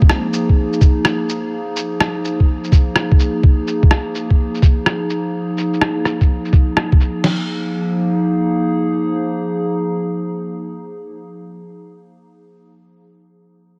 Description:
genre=future garage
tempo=126 BPM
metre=4/4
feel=swing 66% on 16ths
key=unclear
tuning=A4 = 440 Hz
part: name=warbly tape-like pad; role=sustained chords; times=0.0-11.8 s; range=F3 to Ab4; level=-22 LUFS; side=equal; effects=chorus, built-in reverb, vintage 12-bit sampler grit, sidechain pumping
part: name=lo-fi sampler-style drum kit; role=drums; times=0.0-7.4 s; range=crash cymbal, kick drum, snare drum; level=-14 LUFS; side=equal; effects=none
part: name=electronic rim click and shaker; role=drums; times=0.1-7.1 s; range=none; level=-22 LUFS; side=equal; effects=low-pass filter on perc, low-pass filter on snare
room=light reverb, digital ambience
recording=none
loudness=-17 LUFS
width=mono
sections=0.0-7.2 A section; 7.2-11.1 B section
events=none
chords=0.0 Bb7(no3); 7.2 Bb5

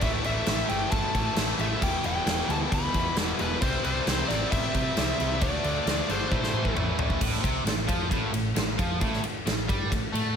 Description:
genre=hard rock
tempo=134 BPM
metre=4/4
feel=straight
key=A minor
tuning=A4 = 439 Hz
part: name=bluesy overdriven lead guitar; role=melody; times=0.0-6.7 s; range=B4 to B5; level=-31 LUFS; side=left 1 dB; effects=distortion
part: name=distorted electric guitar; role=riff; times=0.0-10.3 s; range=E2 to D4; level=-34 LUFS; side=left 9 dB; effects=overdrive, slapback echo
part: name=distorted electric guitar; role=riff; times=0.0-10.3 s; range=E2 to D4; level=-33 LUFS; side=right 10 dB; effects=overdrive, slapback echo
part: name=scooped high-gain guitar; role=riff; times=0.0-10.4 s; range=A2 to F4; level=-34 LUFS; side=equal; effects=distortion, slapback echo
part: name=hollow-body short-scale fingered electric bass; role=bass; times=0.0-10.3 s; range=E1 to C3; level=-32 LUFS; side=equal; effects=none
part: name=big rock drum kit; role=drums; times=0.0-10.2 s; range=crash cymbal, kick drum, ride cymbal, snare drum, toms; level=-28 LUFS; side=equal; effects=none
room=moderate concert hall reverb, RT60 2.3 s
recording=big arena sound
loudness=-24 LUFS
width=side -7 dB against mid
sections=0.0-7.2 A section; 7.2-10.4 B section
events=drum fill 6.3-7.2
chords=0.0 Am; 1.8 Em; 3.6 C; 5.4 Dm; 6.3 Am

